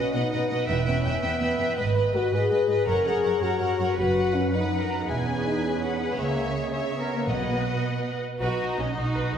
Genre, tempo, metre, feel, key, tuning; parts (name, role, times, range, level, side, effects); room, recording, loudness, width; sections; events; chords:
cinematic, heroic adventure film score; 109 BPM (dotted quarters); 12/8; straight; B major; A4 = 438 Hz
warm symphonic violin section; melody; 0.0-9.4 s; D#5 to G#5; -34 LUFS; left 3 dB
warm symphonic violin section; second line; 0.0-9.4 s; D#4 to E5; -32 LUFS; left 1 dB
rich studio viola section; accompaniment; 0.0-9.4 s; D#4 to B4; -31 LUFS; equal
mellow French horn section; sustained chords; 0.0-7.9 s; G#3 to B4; -27 LUFS; left 2 dB
warm symphonic cello section; bass; 0.0-9.4 s; E2 to F#4; -30 LUFS; right 3 dB
dark symphonic double bass section; bass; 0.7-9.4 s; E1 to C#2; -31 LUFS; right 2 dB
timpani; percussion; 7.3-7.8 s; B2; -35 LUFS; equal
wet scoring stage reverb, RT60 2.0 s; recorded in a church or concert hall; -23 LUFS; side -8 dB against mid
0.0-8.4 A section
0.0 B; 0.7 Em; 1.8 G#m; 2.9 F#; 4.0 B/F#; 5.1 E; 6.2 C#m; 7.3 B